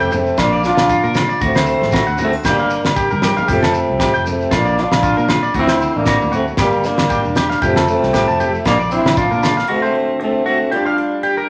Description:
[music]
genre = highlife guitar band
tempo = 116 BPM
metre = 4/4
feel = swing 55% on 16ths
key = unclear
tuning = A4 = 443 Hz
[part]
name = warm French horn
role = melody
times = 0.0-11.2 s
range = Bb3 to F4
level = -22 LUFS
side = equal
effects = none
[part]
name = growling alto saxophone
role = second line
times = 0.0-11.2 s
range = G3 to D4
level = -24 LUFS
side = equal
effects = none
[part]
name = picked steel-string acoustic guitar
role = accompaniment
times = 0.0-11.5 s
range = Bb2 to C5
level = -28 LUFS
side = equal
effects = none
[part]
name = electric guitar at the edge of break-up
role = arpeggios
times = 0.0-11.5 s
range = F4 to A5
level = -22 LUFS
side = equal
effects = none
[part]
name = fingered electric bass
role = bass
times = 0.0-9.6 s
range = E1 to Bb2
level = -26 LUFS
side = equal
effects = none
[part]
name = shekere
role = percussion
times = 0.0-9.6 s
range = none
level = -31 LUFS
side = equal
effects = none
[part]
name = congas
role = percussion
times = 0.1-9.6 s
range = none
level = -30 LUFS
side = equal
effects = none
[part]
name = cloth-damped thuddy drum kit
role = drums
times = 0.4-9.6 s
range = kick drum, snare drum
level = -24 LUFS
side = equal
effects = none
[part]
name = agogo bells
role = percussion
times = 0.4-9.6 s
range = none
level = -25 LUFS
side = equal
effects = none
[sound]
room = wet large studio reverb, RT60 1.2 s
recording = none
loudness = -16 LUFS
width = mono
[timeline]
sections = 0.0-11.5 A section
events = drum fill 3.1-3.5; break 9.7-11.5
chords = 0.4 Bb; 1.4 D7; 2.5 Gm7; 3.5 Fadd9; 4.5 Bb; 5.6 D7; 6.6 Gm; 7.6 Fadd9; 8.7 Bb; 9.7 D7; 10.7 Gm7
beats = 0.38 0.90 | 1.42 1.94 2.45 2.97 | 3.48 4.00 4.52 5.04 | 5.55 6.07 6.58 7.10 | 7.62 8.14 8.65 9.17 | 9.69 10.20 10.72 11.23

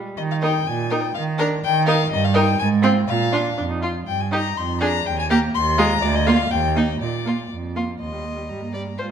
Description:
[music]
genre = quick classical-period movement for string quartet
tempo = 123 BPM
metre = 2/4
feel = straight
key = Eb major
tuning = A4 = 440 Hz
[part]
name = rich viola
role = accompaniment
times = 0.0-9.1 s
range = G3 to F4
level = -24 LUFS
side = right 2 dB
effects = none
[part]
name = rich violin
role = melody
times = 0.2-9.1 s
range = D5 to C6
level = -24 LUFS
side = left 8 dB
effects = none
[part]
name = warm cello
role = bass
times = 0.2-9.1 s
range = D2 to Eb3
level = -22 LUFS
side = right 4 dB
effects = none
[part]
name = rich violin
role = second line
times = 0.4-9.1 s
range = Eb4 to Eb5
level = -27 LUFS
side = left 2 dB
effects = none
[sound]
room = wet recital hall reverb, RT60 1.4 s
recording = none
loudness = -18 LUFS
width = side -8 dB against mid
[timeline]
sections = 0.2-8.0 A section; 8.0-9.1 B section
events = none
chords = 0.2 Eb5; 1.1 Bb/Eb; 1.6 Eb; 2.1 Eb/G; 2.6 Fm/Ab; 3.1 Bb; 4.1 Eb/G; 4.6 Bb7/F; 5.1 Eb; 5.5 Fm7/Eb; 6.0 Bb/D; 6.5 Eb; 7.0 Bb; 8.0 Eb; 8.5 Eb/G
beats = | 0.17 0.67 | 1.15 1.63 | 2.11 2.59 | 3.08 3.58 | 4.07 4.57 | 5.05 5.54 | 6.02 6.51 | 7.00 7.50 | 8.00 8.49 | 8.98

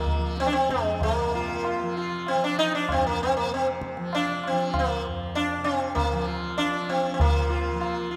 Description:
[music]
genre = indian classical, Hindustani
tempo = 97 BPM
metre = 5/4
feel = straight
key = unclear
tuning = A4 = 439 Hz
[part]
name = sitar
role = melody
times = 0.0-8.2 s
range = Ab3 to F4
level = -27 LUFS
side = equal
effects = none
[part]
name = tanpura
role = drone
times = 0.0-8.2 s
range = F2 to F3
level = -36 LUFS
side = equal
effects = none
[part]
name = tabla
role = percussion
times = 0.1-8.0 s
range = none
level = -32 LUFS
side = equal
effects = none
[sound]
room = wet concert hall reverb, RT60 2.5 s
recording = none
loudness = -26 LUFS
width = mono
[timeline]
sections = 0.0-7.2 A section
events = speeding up 0.0-8.2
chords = none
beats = 0.39 | 1.02 1.64 2.27 2.89 3.51 | 4.13 4.75 5.36 5.98 6.59 | 7.20 7.81

